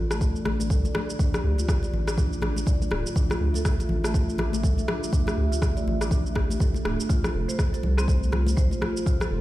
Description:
afro house; 122 BPM; 4/4; swing 59% on 16ths; D minor; A4 = 440 Hz
dark analog pad; sustained chords; 0.0-9.4 s; A3 to E5; -34 LUFS; right 2 dB; chorus, sidechain pumping
round analog bass; bass; 0.0-9.4 s; D1 to D2; -26 LUFS; equal; sidechain pumping
marimba with hard mallets; arpeggios; 0.1-9.3 s; A3 to D5; -33 LUFS; left 1 dB; vintage 12-bit sampler grit, sidechain pumping, low-pass filter, tape echo
electronic rim click and shaker; drums; 0.1-9.3 s; -32 LUFS; equal
congas; percussion; 0.1-9.3 s; -34 LUFS; left 3 dB
electronic kick drum; drums; 0.2-9.2 s; -24 LUFS; equal
light reverb; played on a big sound system in a bare room, stone room reverb; -22 LUFS; side -16 dB against mid
0.0-9.4 A section
filter sweep on marimba 0.0-9.4
0.0 Dm; 7.1 Fadd9

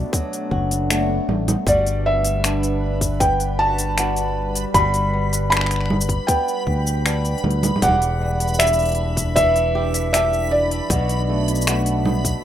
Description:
folktronica; 78 BPM; 4/4; straight; G major; A4 = 440 Hz
felt-muted upright piano; melody; 0.0-12.4 s; D5 to B5; -21 LUFS; equal; ping-pong delay
warbly tape-like pad; sustained chords; 0.0-12.4 s; E3 to B4; -29 LUFS; equal; chorus, built-in reverb
flamenco guitar; arpeggios; 0.0-12.4 s; E2 to G4; -26 LUFS; right 1 dB; ping-pong delay
fingered electric bass; bass; 0.0-12.3 s; E1 to D2; -22 LUFS; equal; tube saturation
electronic kick drum; drums; 0.1-12.4 s; -23 LUFS; equal
organic electronic drum kit; drums; 0.1-12.4 s; congas, finger snaps, hi-hat, shaker; -23 LUFS; equal
backwards swelling texture; texture; 2.6-12.4 s; B5; -34 LUFS; right 1 dB; built-in reverb
digital ambience; rough home demo mix; -17 LUFS; side -10 dB against mid
0.0-12.4 A section
0.0 Bm7; 1.7 Gmaj7; 7.8 Em7; 10.9 Bm7

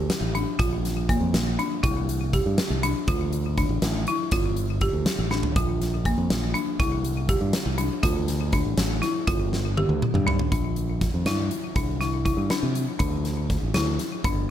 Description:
progressive instrumental, band music in an uneven meter; 242 BPM (eighths); 5/8; straight; Bb lydian; A4 = 440 Hz
folk marimba with hard mallets; arpeggios; 0.0-14.4 s; Bb3 to G4; -28 LUFS; left 1 dB; ping-pong delay
modern bright fingered electric bass; bass; 0.0-14.5 s; G1 to C3; -26 LUFS; equal
huge arena drum kit; drums; 0.1-14.4 s; hi-hat, kick drum, snare drum, toms; -26 LUFS; equal
light reverb; -22 LUFS; side -10 dB against mid
0.0-10.5 A section; 10.5-14.5 B section
drum fill 5.3, 9.5-10.5
0.0 G5; 0.6 Bb; 1.8 C; 3.1 Dmadd9; 4.3 G5; 5.6 Bb; 6.8 C; 8.0 Dmadd9; 9.3 G5; 10.5 Bb; 11.8 C; 13.0 Dsus2

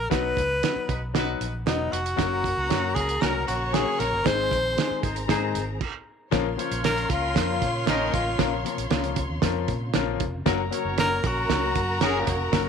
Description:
uptempo 1960s-style soul; 116 BPM; 4/4; straight; Bb minor; A4 = 440 Hz
breathy tenor saxophone; melody; 0.0-12.7 s; D#4 to C5; -27 LUFS; equal
vintage muted fingered electric bass; bass; 0.0-12.7 s; E1 to Bb2; -31 LUFS; equal
warm baby grand piano; accompaniment; 0.1-12.7 s; F3 to C5; -29 LUFS; left 15 dB
cloth-damped thuddy drum kit; drums; 0.1-12.6 s; crash cymbal, hi-hat, kick drum, snare drum; -27 LUFS; right 7 dB
clear horn section; second line; 0.9-12.4 s; Db4 to Db5; -33 LUFS; equal
vibraphone with hard mallets; second line; 1.7-12.7 s; D#5 to C6; -36 LUFS; left 3 dB
warm symphonic string section; second line; 2.2-12.7 s; Bb4 to Db6; -32 LUFS; left 2 dB
mellow tonewheel organ; sustained chords; 2.2-12.7 s; C3 to Ab4; -37 LUFS; equal; slow rotary speaker, chorus vibrato
moderate spring reverb, RT60 2.0 s; 1960s-style stereo with parts hard left and right; -22 LUFS; side -6 dB against mid
0.0-6.3 A section; 6.3-12.7 B section
stop 5.8-6.3
0.1 B; 2.2 Gb; 4.3 Ab; 6.3 Bbm; 10.5 Gb

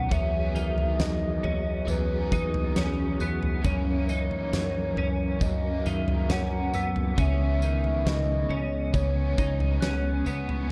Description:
dream pop; 68 BPM; 4/4; straight; A4 = 440 Hz
warbly nostalgic lead; melody; 0.0-10.3 s; B4 to F#5; -35 LUFS; equal; chorus, digital delay
overdriven electric guitar; accompaniment; 0.0-10.7 s; F#2 to A#4; -40 LUFS; equal; tremolo, subtle chorus
mellow tonewheel organ; sustained chords; 0.0-10.7 s; C#3 to A#4; -36 LUFS; equal; chorus vibrato, fast rotary speaker
twelve-string electric guitar; arpeggios; 0.0-10.7 s; D#3 to D#4; -36 LUFS; equal; ensemble chorus, digital delay
woody fretless electric bass; bass; 0.0-10.7 s; C#2 to F#2; -34 LUFS; equal; ensemble chorus
huge arena drum kit; drums; 0.1-10.7 s; kick drum, snare drum, tambourine, toms; -30 LUFS; equal
glockenspiel with soft plastic mallets; texture; 2.3-10.7 s; D#6 to F#6; -46 LUFS; equal; digital delay
studio ambience; dark, warm production; -27 LUFS; mono
0.0-10.7 A section
0.1 Emaj9; 3.6 F#7; 7.2 C#m7

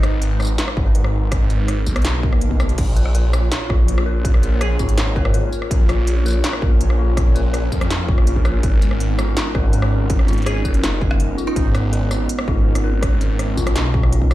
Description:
half-time drum and bass; 164 BPM; 4/4; half-time; A4 = 440 Hz
glassy wavetable pluck; melody; 0.0, 4.6-5.1, 10.5-11.7 s; Eb4 to Ab4; -31 LUFS; right 3 dB; chorus, digital delay
dark analog pad; sustained chords; 0.0-14.3 s; Ab3 to Db5; -29 LUFS; right 1 dB; lush chorus, sidechain pumping
phased detuned saw bass; bass; 0.0-14.3 s; Gb1 to F2; -18 LUFS; equal; phaser, tube saturation
industrial drum kit; drums; 0.0-14.3 s; crash cymbal, hi-hat, rim click, snare drum, tambourine; -26 LUFS; equal
electronic kick drum; drums; 0.8-14.3 s; -18 LUFS; equal; distortion
swell; sound effects; 2.2-2.8 s; -29 LUFS; left 6 dB
metallic inharmonic drone; texture; 4.1-14.3 s; Db4; -31 LUFS; right 1 dB; chorus, built-in reverb
dark detuned synth bell; arpeggios; 3.0-14.3 s; F4 to Bb4; -29 LUFS; left 6 dB; chorus, ping-pong delay
little or no reverb; played on a big sound system in a bare room, large studio reverb; -15 LUFS; side -16 dB against mid
0.0-14.3 A section
swell 2.2-2.8
0.0 Abmadd9; 2.8 Bbm; 8.6 Abmadd9

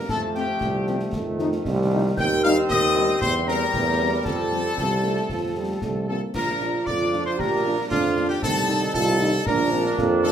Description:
military-style march for wind band; 115 BPM; 2/4; straight; Bb major; A4 = 438 Hz
clear trumpet section; melody; 0.0-10.3 s; F4 to G5; -27 LUFS; equal
warm trombone section; sustained chords; 0.0-10.3 s; Eb3 to Eb4; -30 LUFS; right 3 dB
bright wooden piccolo; second line; 0.1-10.3 s; F5 to G6; -28 LUFS; left 5 dB
clear tuba; bass; 0.1-10.3 s; Bb1 to F2; -24 LUFS; right 2 dB
concert snare drum, clash cymbals and concert bass drum; drums; 0.1-10.3 s; -33 LUFS; left 1 dB
warm French horn section; accompaniment; 0.3-10.3 s; F3 to Eb4; -30 LUFS; left 3 dB
mellow euphonium; second line; 4.8-10.3 s; F3 to G4; -28 LUFS; right 4 dB
wet large studio reverb, RT60 0.9 s; minimal, uncompressed stereo recording; -20 LUFS; side -9 dB against mid
0.0-6.3 A section; 6.3-10.3 B section
0.1 F; 1.1 F7; 2.2 Cm/Eb; 3.2 C7/E; 4.3 F; 6.3 Bb; 8.4 Adim/C; 9.5 Bb

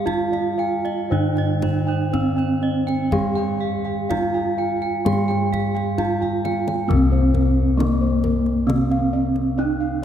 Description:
Javanese gamelan; 56-67 BPM; 4/4; straight; A4 = 444 Hz
gamelan-type bronze metallophone; melody; 0.0-10.0 s; Bb3-40c to G4+20c; -22 LUFS; right 2 dB
gamelan-type bronze metallophone; accompaniment; 0.0-10.0 s; C3 to G3+20c; -26 LUFS; right 2 dB
gamelan-type bossed gongs; arpeggios; 0.0-10.0 s; Bb4-40c to G5+20c; -29 LUFS; left 2 dB
gamelan-type bronze metallophone; arpeggios; 0.0-6.9 s; C5 to G5+20c; -29 LUFS; right 2 dB
gamelan-type bossed gongs; bass; 0.0-10.0 s; C2 to G4+20c; -24 LUFS; left 2 dB
kendang; percussion; 0.1-9.5 s; -31 LUFS; left 1 dB
wet cathedral reverb, RT60 4.4 s; recorded in a church or concert hall; -18 LUFS; side -9 dB against mid
0.0-6.9 A section; 6.9-10.0 B section
drum fill 6.2-6.9

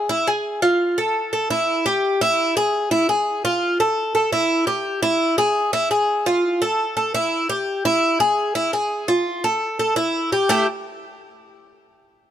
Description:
latin; 170 BPM; 4/4; straight; A4 = 439 Hz
Cuban tres; solo; 0.0-10.7 s; A3 to A4; -18 LUFS; equal
light reverb; -18 LUFS; side -10 dB against mid
0.0-10.5 A section; 10.5-11.9 B section
0.0 E; 0.6 F; 1.3 N.C.; 2.7 E; 3.4 F; 4.1 N.C.; 5.6 E; 6.3 F; 7.0 N.C.; 8.4 E; 9.1 F; 9.8 A5

